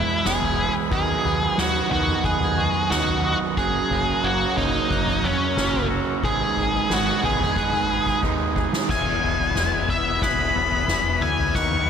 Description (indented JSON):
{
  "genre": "post-rock",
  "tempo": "90 BPM",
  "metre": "4/4",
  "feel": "straight",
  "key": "E lydian",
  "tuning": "A4 = 440 Hz",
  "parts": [
    { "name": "octave-fuzz lead guitar", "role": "melody", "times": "0.0-11.9 s", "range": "C#4 to C#6", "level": "-23 LUFS", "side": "left 1 dB", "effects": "distortion, analog delay" },
    { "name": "clear chamber string section", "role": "sustained chords", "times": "0.0-11.9 s", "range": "F#4 to B5", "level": "-35 LUFS", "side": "left 2 dB", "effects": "none" },
    { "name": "glockenspiel with rubber mallets", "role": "arpeggios", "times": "0.0-11.9 s", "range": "D#6 to G#6", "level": "-33 LUFS", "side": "right 6 dB", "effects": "analog delay" },
    { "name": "twangy electric guitar", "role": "arpeggios", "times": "0.0-11.9 s", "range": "E2 to G#4", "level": "-31 LUFS", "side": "left 4 dB", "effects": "analog delay" },
    { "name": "overdriven semi-hollow guitar", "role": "riff", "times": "0.0-8.9 s", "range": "F#2 to E4", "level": "-26 LUFS", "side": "right 13 dB", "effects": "none" },
    { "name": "growling fingered electric bass", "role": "bass", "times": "0.3-11.9 s", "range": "E1 to D#2", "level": "-29 LUFS", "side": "left 1 dB", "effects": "overdrive" },
    { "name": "soft-mallet drum kit", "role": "drums", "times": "0.3-11.9 s", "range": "crash cymbal, kick drum, snare drum, toms", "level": "-27 LUFS", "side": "left 2 dB", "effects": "none" },
    { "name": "overdriven semi-hollow guitar", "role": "riff", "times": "8.9-11.9 s", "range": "B3 to E4", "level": "-28 LUFS", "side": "left 14 dB", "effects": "none" }
  ],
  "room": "light reverb, small room reverb",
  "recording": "none",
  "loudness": "-19 LUFS",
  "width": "side -7 dB against mid",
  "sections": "0.0-8.9 A section; 8.9-11.9 B section",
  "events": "drum fill 7.6-8.9, 8.9-11.9; build-up 8.9-11.9",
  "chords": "0.0 E; 0.9 B/D#; 3.6 F#; 6.2 G#m; 8.9 E"
}